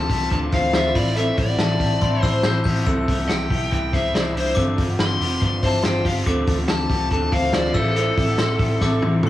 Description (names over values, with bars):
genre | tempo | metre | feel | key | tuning
jangly indie pop | 141 BPM | 4/4 | straight | A minor | A4 = 441 Hz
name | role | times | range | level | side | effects
dark smooth lead guitar | melody | 0.0-9.2 s | A4 to C6 | -25 LUFS | left 2 dB | overdrive
glockenspiel with brass mallets | second line | 0.0-9.3 s | A5 to G6 | -31 LUFS | left 3 dB | slapback echo, tape echo
electric guitar through a small old amp | accompaniment | 0.0-9.3 s | G2 to F4 | -27 LUFS | right 1 dB | slapback echo
electric guitar through a small old amp | arpeggios | 0.0-9.3 s | B3 to C5 | -26 LUFS | left 1 dB | phaser
vintage muted picked electric bass | bass | 0.0-9.3 s | F1 to D2 | -24 LUFS | equal | none
vintage drum kit | drums | 0.1-9.3 s | crash cymbal, hi-hat, kick drum, snare drum, toms | -23 LUFS | equal | none
room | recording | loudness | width
moderate concert hall reverb, RT60 1.9 s, studio ambience | big arena sound, small room ambience | -18 LUFS | side -14 dB against mid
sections
0.0-9.3 A section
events
drum fill 8.8-9.3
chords
0.0 Dm7; 0.9 Am7; 2.9 Cmaj7; 4.6 G7sus4; 6.3 Dm7; 7.7 Am7